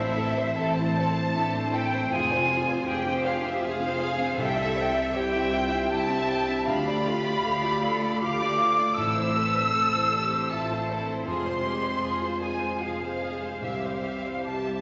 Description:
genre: cinematic, emotional film score for orchestra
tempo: 78 BPM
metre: 3/4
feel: rubato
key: unclear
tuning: A4 = 440 Hz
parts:
  - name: warm symphonic violin section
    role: melody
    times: 0.0-14.8 s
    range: Ab4 to A5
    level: -36 LUFS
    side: equal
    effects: none
  - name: flute section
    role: second line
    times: 0.0-14.8 s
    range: E5 to E6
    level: -31 LUFS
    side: equal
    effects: none
  - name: warm symphonic violin section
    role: second line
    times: 0.0-14.8 s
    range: E5 to E6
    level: -35 LUFS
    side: equal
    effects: none
  - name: felt-muted upright piano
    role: accompaniment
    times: 0.0-14.8 s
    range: C2 to E5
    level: -36 LUFS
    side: equal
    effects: none
  - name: warm symphonic viola section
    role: accompaniment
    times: 0.0-14.8 s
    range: E3 to Ab4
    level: -41 LUFS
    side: equal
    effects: none
  - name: dark French horn section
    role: sustained chords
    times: 0.0-14.8 s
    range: G3 to G4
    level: -36 LUFS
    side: equal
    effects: none
  - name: concert harp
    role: arpeggios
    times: 0.0-14.8 s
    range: F2 to F5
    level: -40 LUFS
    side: equal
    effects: none
  - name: rich symphonic cello section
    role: bass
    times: 0.0-14.8 s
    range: C4 to B4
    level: -38 LUFS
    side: equal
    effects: none
  - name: warm studio double bass section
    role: bass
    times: 0.0-14.8 s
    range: F1 to D2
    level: -37 LUFS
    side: equal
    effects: none
  - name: timpani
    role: percussion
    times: 0.0-0.9, 6.7-10.1 s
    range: A2 to D3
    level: -43 LUFS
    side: equal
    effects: none
room: wet scoring stage reverb, RT60 1.7 s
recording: nothing above 7.7 kHz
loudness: -26 LUFS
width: mono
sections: 0.0-14.8 A section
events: none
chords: 0.0 Am; 2.1 Fm; 4.4 C; 6.7 Dm; 9.0 Am; 11.3 Fm; 13.6 C

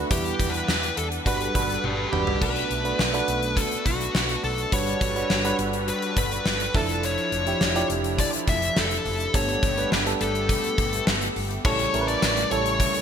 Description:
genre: 1980s-style pop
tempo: 104 BPM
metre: 4/4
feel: straight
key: unclear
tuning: A4 = 439 Hz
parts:
  - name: FM electric piano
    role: accompaniment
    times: 0.0-13.0 s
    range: F3 to B4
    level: -29 LUFS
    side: right 4 dB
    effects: chorus
  - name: brassy analog pad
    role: sustained chords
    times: 0.0-13.0 s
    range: C#3 to F#5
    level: -33 LUFS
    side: left 1 dB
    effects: chorus
  - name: woody fretless electric bass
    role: bass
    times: 0.0-12.8 s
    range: F1 to E2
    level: -31 LUFS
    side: equal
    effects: none
  - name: fuzz lead guitar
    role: melody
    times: 0.1-13.0 s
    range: F#4 to E5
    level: -27 LUFS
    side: left 2 dB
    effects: distortion, ping-pong delay
  - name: gated 80s drum kit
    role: drums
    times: 0.1-13.0 s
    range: crash cymbal, hi-hat, kick drum, snare drum, tambourine, toms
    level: -26 LUFS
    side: left 1 dB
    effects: gated reverb
  - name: warm studio violin section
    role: second line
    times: 11.6-13.0 s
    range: C#6 to D6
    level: -30 LUFS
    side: left 4 dB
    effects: none
room: moderate lush hall reverb, RT60 2.8 s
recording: bright 1980s-style digital production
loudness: -21 LUFS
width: side -8 dB against mid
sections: 0.0-2.4 A section; 2.4-11.6 B section; 11.6-13.0 C section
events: drum fill 1.8-2.4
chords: 0.1 Em7; 1.3 Gmaj7; 2.4 Bm7; 4.7 Gmaj7; 6.7 Dmadd9/F; 9.3 Gadd9; 11.6 A7

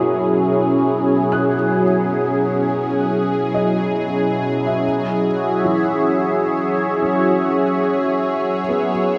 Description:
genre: ambient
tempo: free time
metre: none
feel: none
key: F# mixolydian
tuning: A4 = 440 Hz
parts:
  - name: warm analog pad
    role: sustained chords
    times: 0.0-9.2 s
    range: B2 to E5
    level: -19 LUFS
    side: equal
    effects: chorus
  - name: felt-muted upright piano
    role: arpeggios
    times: 0.0-9.2 s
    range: E3 to F#6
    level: -27 LUFS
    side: equal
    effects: delay
room: wet cathedral reverb, RT60 5.8 s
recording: in a vast, echoing space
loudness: -18 LUFS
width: mono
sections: 0.0-9.2 A section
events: none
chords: 0.0 F#7sus4; 4.8 C#m

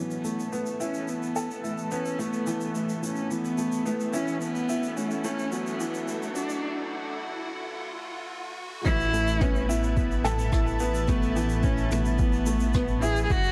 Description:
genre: piano and strings electronica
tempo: 108 BPM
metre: 4/4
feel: straight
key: unclear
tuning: A4 = 440 Hz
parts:
  - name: dark cello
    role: melody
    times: 0.0-13.5 s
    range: A3 to G#4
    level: -33 LUFS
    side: equal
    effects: none
  - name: lush unison pad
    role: sustained chords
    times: 0.0-13.5 s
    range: E3 to A5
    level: -39 LUFS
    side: equal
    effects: chorus
  - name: dark upright piano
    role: riff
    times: 0.0-13.3 s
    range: E3 to A4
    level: -33 LUFS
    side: equal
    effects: tape echo
  - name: dark detuned saw bass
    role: bass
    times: 0.0-13.5 s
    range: F#1 to A1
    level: -31 LUFS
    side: equal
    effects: tube saturation, sidechain pumping, high-pass filter
  - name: riser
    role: sound effects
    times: 3.1-8.9 s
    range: none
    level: -44 LUFS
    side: equal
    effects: none
  - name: vintage brush drum kit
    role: drums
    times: 0.1-13.5 s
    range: rim click, shaker, toms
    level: -42 LUFS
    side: equal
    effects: high-pass filter on toms, high-pass filter on snare, high-pass filter on perc, high-pass filter on room
  - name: electronic kick drum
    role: drums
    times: 8.9-13.4 s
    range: none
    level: -28 LUFS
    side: equal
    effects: overdrive
room: moderate huge ambient reverb, RT60 4.3 s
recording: dark, warm production, high-pass filter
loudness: -28 LUFS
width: mono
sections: 0.0-8.9 A section; 8.9-13.5 B section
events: build-up 0.0-8.9; filter sweep 0.0-8.9; riser 3.1-8.9; break 6.6-8.9; drop 8.9-13.5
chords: 0.0 Asus2; 4.4 F#m7; 8.9 Asus2

